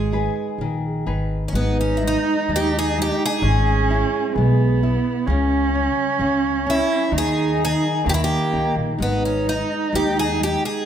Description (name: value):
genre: fado-style ballad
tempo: 64 BPM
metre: 2/4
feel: rubato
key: G# harmonic minor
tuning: A4 = 440 Hz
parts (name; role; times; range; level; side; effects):
- picked twelve-string acoustic guitar; melody; 0.0-10.9 s; B3 to G#4; -23 LUFS; equal; none
- nylon-string guitar; accompaniment; 0.0-10.8 s; C#3 to B4; -26 LUFS; left 2 dB; none
- upright bass; bass; 0.0-10.5 s; G#1 to D#2; -23 LUFS; equal; none
- dark cello; second line; 1.5-10.8 s; A#3 to D#4; -23 LUFS; right 4 dB; none
room: moderate recital hall reverb, RT60 1.4 s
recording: minimal, uncompressed stereo recording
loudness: -18 LUFS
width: side -9 dB against mid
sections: 0.0-1.5 A section; 1.5-10.9 B section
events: none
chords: 0.0 G#m; 1.5 G#5; 3.4 E/G#; 5.3 C#m; 7.1 D#sus4; 8.1 D#; 9.0 G#5